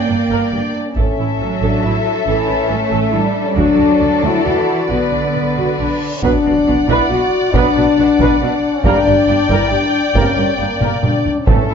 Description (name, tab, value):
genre	cinematic, epic orchestral film score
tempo	137 BPM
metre	3/4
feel	straight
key	B minor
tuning	A4 = 440 Hz
part	dark studio violin section	melody	0.0-11.7 s	D5 to G5	-24 LUFS	left 3 dB	none
part	rich symphonic violin section	second line	0.0-11.7 s	A4 to D5	-22 LUFS	left 3 dB	none
part	mellow French horn section	sustained chords	0.0-11.7 s	Bb3 to F#4	-17 LUFS	left 4 dB	none
part	rich symphonic cello section	bass	0.0-11.7 s	G2 to Bb3	-21 LUFS	right 4 dB	none
part	dark symphonic viola section	accompaniment	0.1-11.7 s	A3 to B4	-24 LUFS	right 2 dB	none
part	rich symphonic double bass section	bass	0.1-11.7 s	G1 to D2	-22 LUFS	right 5 dB	none
part	taiko ensemble	drums	1.0-11.7 s	none	-18 LUFS	equal	none
part	reverse cymbal and impact	sound effects	5.9-7.5 s	none	-28 LUFS	equal	none
part	clear trombone section	sustained chords	6.2-11.6 s	E3 to B3	-22 LUFS	right 6 dB	none
room	wet recital hall reverb, RT60 1.4 s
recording	nothing above 7.5 kHz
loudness	-12 LUFS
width	side -7 dB against mid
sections	0.0-6.2 A section; 6.2-11.7 A section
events	reverse cymbal 5.9-6.2; impact 6.2-7.5; drum fill 10.8-11.5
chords	0.0 Gm; 1.0 A; 3.6 D; 4.9 Bm; 8.8 Gm